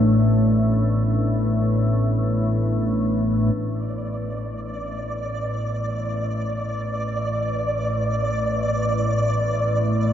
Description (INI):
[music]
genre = dark ambient drone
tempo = free time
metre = none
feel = none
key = unclear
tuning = A4 = 440 Hz
[part]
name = deep dark ambient pad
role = sustained chords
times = 0.0-10.1 s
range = A3 to E5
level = -26 LUFS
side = left 2 dB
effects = chorus, built-in reverb
[part]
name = organ-like drone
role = drone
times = 0.0-10.1 s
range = A1 to A2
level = -22 LUFS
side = equal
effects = ensemble chorus, built-in reverb
[part]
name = flickering grainy texture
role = texture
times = 3.9-10.1 s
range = D5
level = -26 LUFS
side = right 1 dB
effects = built-in reverb
[sound]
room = wet huge ambient reverb, RT60 7.9 s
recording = dark, warm production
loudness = -20 LUFS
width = side -9 dB against mid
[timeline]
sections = 0.0-3.6 A section; 3.6-10.1 B section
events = fade-in on synth drone 3.6-10.1; fade-in on ambient pad 3.6-10.1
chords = 0.0 Dsus2/A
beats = free time